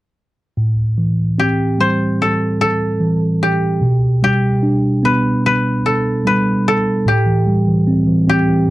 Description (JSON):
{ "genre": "pop", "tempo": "74 BPM", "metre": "4/4", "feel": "straight", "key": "unclear", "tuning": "A4 = 442 Hz", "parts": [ { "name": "mellow tine electric piano", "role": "accompaniment", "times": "0.6-8.7 s", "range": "A2 to D4", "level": "-14 LUFS", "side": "equal", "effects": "none" }, { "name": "koto", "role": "melody", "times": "1.4-8.7 s", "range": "G4 to C5", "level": "-18 LUFS", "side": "equal", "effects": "slapback echo" } ], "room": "little or no reverb", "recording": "dry, close 1970s-style studio recording", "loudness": "-13 LUFS", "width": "side -17 dB against mid", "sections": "0.6-7.1 A section; 7.1-8.7 B section", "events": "none", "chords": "0.6 Am7; 3.8 G/B; 7.1 Am7" }